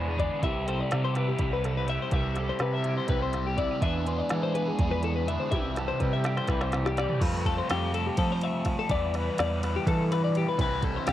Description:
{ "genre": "math rock and midwest emo", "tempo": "248 BPM (eighths)", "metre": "7/8", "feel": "straight", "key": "C major", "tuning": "A4 = 440 Hz", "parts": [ { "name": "twelve-string electric guitar", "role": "accompaniment", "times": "0.0-8.9 s", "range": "C3 to B4", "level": "-35 LUFS", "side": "right 6 dB", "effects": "phaser, cassette tape" }, { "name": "twelve-string electric guitar", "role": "arpeggios", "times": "0.0-11.1 s", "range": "G4 to E5", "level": "-31 LUFS", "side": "left 7 dB", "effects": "cassette tape" }, { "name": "cranked stack guitar", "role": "riff", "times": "0.0-11.1 s", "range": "C3 to G#4", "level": "-32 LUFS", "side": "right 1 dB", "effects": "overdrive, phaser, cassette tape" }, { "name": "growling picked electric bass", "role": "bass", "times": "0.0-11.1 s", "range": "C2 to F3", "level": "-30 LUFS", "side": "right 1 dB", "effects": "overdrive" }, { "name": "organic electronic drum kit", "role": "drums", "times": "0.2-11.1 s", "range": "crash cymbal, hi-hat, kick drum, ride cymbal, snare drum, toms", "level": "-30 LUFS", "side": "right 1 dB", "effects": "overdrive, cassette tape" } ], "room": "little or no reverb", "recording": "home recording on cassette", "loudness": "-25 LUFS", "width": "side -12 dB against mid", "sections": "0.0-7.2 A section; 7.2-11.1 B section", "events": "drum fill 5.5-7.2", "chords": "0.4 Cmaj7; 3.8 E7; 5.5 Cmaj7; 7.2 Fmaj9; 8.9 Em7; 10.6 C6" }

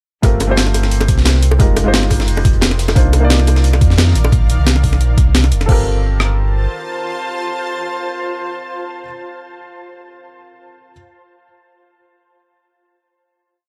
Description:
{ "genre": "liquid drum and bass", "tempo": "176 BPM", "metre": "4/4", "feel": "swing 53% on 16ths", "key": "G minor", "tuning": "A4 = 442 Hz", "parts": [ { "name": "dark grand piano", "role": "accompaniment", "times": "0.2-10.9 s", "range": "Ab3 to D5", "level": "-24 LUFS", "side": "equal", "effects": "dub echo" }, { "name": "sub bass with octave", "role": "bass", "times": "0.2-6.7 s", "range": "F1 to F2", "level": "-16 LUFS", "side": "equal", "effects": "none" }, { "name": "breakbeat sampler-style drum kit", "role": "drums", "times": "0.2-6.3 s", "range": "kick drum, rim click", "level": "-16 LUFS", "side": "equal", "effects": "overdrive" }, { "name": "breakbeat sampler-style drum kit", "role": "drums", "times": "0.2-5.8 s", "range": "crash cymbal, hi-hat, snare drum", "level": "-21 LUFS", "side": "equal", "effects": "overdrive" }, { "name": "crunchy breakbeat drum kit", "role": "drums", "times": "0.2-4.2 s", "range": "hi-hat, snare drum", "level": "-28 LUFS", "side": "equal", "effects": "high-pass filter on hats, high-pass filter on snare, high-pass filter on room" }, { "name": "bongos", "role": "percussion", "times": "0.4-4.3 s", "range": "none", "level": "-25 LUFS", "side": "equal", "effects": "none" }, { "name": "shimmering ambient pad", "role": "sustained chords", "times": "3.5-9.0 s", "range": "Eb3 to A5", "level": "-27 LUFS", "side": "equal", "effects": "chorus, built-in reverb, sidechain pumping" } ], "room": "small room ambience", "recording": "none", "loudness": "-14 LUFS", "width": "mono", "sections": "0.2-5.7 drop; 5.7-8.4 final chord", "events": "drop 0.2-5.7", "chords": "0.2 Gm11; 1.6 Fm11; 3.0 Cm11; 4.2 Bbm11; 5.7 Gm11" }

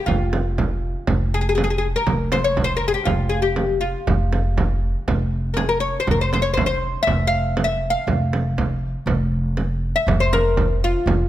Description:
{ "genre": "Arabic maqam ensemble", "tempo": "120 BPM", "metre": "4/4", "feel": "straight", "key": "F maqam nahawand", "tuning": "A4 = 439 Hz", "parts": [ { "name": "oud", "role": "melody", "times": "0.0-11.3 s", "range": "F4 to F5", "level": "-22 LUFS", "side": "left 2 dB", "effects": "none" }, { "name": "upright bass", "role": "bass", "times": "0.1-11.3 s", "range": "F1", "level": "-22 LUFS", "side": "equal", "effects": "none" }, { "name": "frame drum", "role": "percussion", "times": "0.1-11.2 s", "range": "none", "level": "-24 LUFS", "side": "right 3 dB", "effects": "none" } ], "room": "light reverb", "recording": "close, detailed microphones", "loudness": "-18 LUFS", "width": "side -13 dB against mid", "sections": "0.0-11.3 A section", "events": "none", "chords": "none" }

